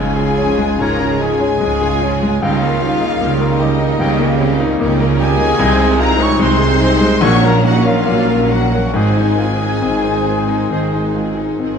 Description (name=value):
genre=classical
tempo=67-77 BPM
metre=4/4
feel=rubato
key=unclear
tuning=A4 = 442 Hz
part: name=clear baby grand piano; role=melody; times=0.0-11.8 s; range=Bb1 to C5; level=-18 LUFS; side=left 3 dB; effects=none
part: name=rich studio violin section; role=melody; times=0.0-11.6 s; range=Eb5 to Db6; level=-25 LUFS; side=left 3 dB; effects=none
part: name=clear symphonic violin section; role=second line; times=0.0-11.8 s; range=Bb3 to C5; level=-27 LUFS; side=left 2 dB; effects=none
part: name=mellow silver concert flute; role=second line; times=0.0-11.6 s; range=Eb5 to Db6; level=-25 LUFS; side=left 2 dB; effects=none
part: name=rich studio viola section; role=accompaniment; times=0.0-11.8 s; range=Eb3 to F4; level=-23 LUFS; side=right 2 dB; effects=none
part: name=mellow French horn section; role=sustained chords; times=0.0-11.8 s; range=Bb3 to Ab4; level=-23 LUFS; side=left 6 dB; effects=none
part: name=warm trombone section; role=sustained chords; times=0.0-11.8 s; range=Db3 to Bb3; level=-24 LUFS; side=right 3 dB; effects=none
part: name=clear trumpet section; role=stabs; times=0.0-11.6 s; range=Eb4 to Db5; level=-23 LUFS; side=left 1 dB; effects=none
part: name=clear symphonic cello section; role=bass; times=0.0-11.8 s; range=Ab2 to Db3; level=-20 LUFS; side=right 5 dB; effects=none
part: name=rich symphonic double bass section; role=bass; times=0.0-11.8 s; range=Ab1 to Db2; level=-21 LUFS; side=right 3 dB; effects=none
part: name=clear oboe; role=second line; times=0.8-11.1 s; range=Eb5 to Ab5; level=-29 LUFS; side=right 1 dB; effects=none
part: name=warm clarinet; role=second line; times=0.8-11.1 s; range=C5 to Eb5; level=-30 LUFS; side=left 3 dB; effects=none
room=moderate scoring stage reverb, RT60 2.0 s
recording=dark, warm production, nothing above 10.4 kHz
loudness=-12 LUFS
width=side -6 dB against mid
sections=0.0-11.8 A section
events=none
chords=0.0 Db; 2.4 Eb7/Db; 5.6 Ab/C; 7.2 Gb/Bb; 9.0 Ab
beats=0.80 1.62 | 2.43 3.21 4.00 4.80 | 5.60 6.41 7.22 8.06 | 8.95 9.83 10.71 11.61